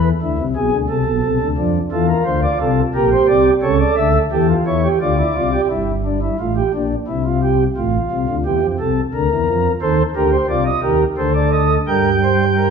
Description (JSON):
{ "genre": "classical, baroque-style 3-part fugue for pipe organ", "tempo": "87 BPM", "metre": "3/4", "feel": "straight", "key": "unclear", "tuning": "A4 = 440 Hz", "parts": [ { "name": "pipe organ, flutes", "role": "solo", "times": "0.0-12.7 s", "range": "G1 to G5", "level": "-14 LUFS", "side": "equal", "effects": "none" } ], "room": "wet recital hall reverb, RT60 1.4 s", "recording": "minimal, uncompressed stereo recording", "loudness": "-14 LUFS", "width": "side -6 dB against mid", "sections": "0.0-5.7 A section; 5.7-12.7 B section", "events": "none", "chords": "0.0 E7; 0.9 Am; 1.6 Dm; 2.9 Gm/Bb; 3.6 A7/C#; 5.0 Dm; 5.7 Gm; 7.1 C; 7.8 F/A; 9.1 Bb/D; 9.8 Cm; 11.2 D5; 11.9 Gm", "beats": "0.22 0.90 | 1.58 2.26 2.94 | 3.63 4.32 5.01 | 5.70 6.39 7.09 | 7.77 8.45 9.14 | 9.81 10.49 11.18 | 11.88 12.58" }